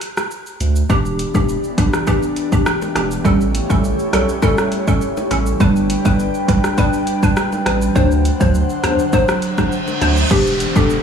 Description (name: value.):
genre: dancehall.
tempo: 102 BPM.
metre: 4/4.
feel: straight.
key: E minor.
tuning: A4 = 441 Hz.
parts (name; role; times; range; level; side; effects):
afro-pop drum kit; drums; 0.0-11.0 s; crash cymbal, hi-hat, kick drum, rim click, shaker; -19 LUFS; equal; none.
saturated sub bass; bass; 0.6-11.0 s; E1 to E2; -19 LUFS; right 1 dB; none.
hollow square pluck; accompaniment; 0.9-11.0 s; E3 to C5; -19 LUFS; right 1 dB; chorus.
airy breathy pad; sustained chords; 0.9-11.0 s; D3 to G5; -22 LUFS; left 2 dB; chorus, sidechain pumping.
bongos; percussion; 0.9-10.5 s; none; -28 LUFS; left 10 dB; none.
reverse cymbal and downlifter; sound effects; 9.4-11.0 s; none; -23 LUFS; right 2 dB; none.
marimba with medium mallets; melody; 10.3-10.9 s; G4 to A4; -19 LUFS; left 1 dB; none.
room: light reverb.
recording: studio reverb.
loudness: -14 LUFS.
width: side -7 dB against mid.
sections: 0.0-10.3 A section.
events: break 0.0-0.9; reverse cymbal 9.4-10.3.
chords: 0.0 N.C.; 0.9 Em7; 3.2 A7; 5.6 G; 8.0 D7; 10.3 Em7.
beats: 0.31 | 0.90 1.49 2.07 2.66 | 3.25 3.84 4.43 5.01 | 5.60 6.19 6.78 7.37 | 7.96 8.54 9.13 9.72 | 10.31 10.90.